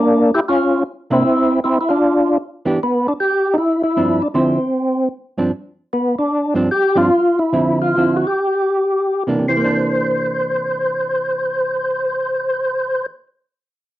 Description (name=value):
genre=jazz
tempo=108-154 BPM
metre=4/4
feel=swing 65% on 8ths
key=C mixolydian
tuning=A4 = 437 Hz
part: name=percussive tonewheel organ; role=melody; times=0.0-13.1 s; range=Bb3 to C5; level=-16 LUFS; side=equal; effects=slow rotary speaker, overdrive, chorus vibrato, cassette tape
part: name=hollow-body jazz guitar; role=accompaniment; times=1.1-13.3 s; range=G2 to G4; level=-18 LUFS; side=right 2 dB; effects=cassette tape
room=moderate studio reverb, RT60 0.6 s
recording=home recording on cassette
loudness=-15 LUFS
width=side -14 dB against mid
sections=0.0-2.8 A section; 2.8-9.5 B section; 9.5-13.9 C section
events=slowing down 5.9-9.5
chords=0.5 C7b9; 1.2 Cadd9; 2.0 G7; 2.8 N.C.; 3.6 G7sus4; 4.3 Dm9; 5.1 G7sus4; 7.5 Dm9; 8.4 C9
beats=0.07 0.46 0.85 | 1.24 1.62 2.01 2.40 | 2.79 3.18 3.57 3.96 | 4.35 4.74 5.12 5.51 | 5.90 6.29 6.69 7.10 | 7.52 7.97 8.43 8.93 | 9.46 10.02 10.58 11.13 | 11.69 12.25 12.80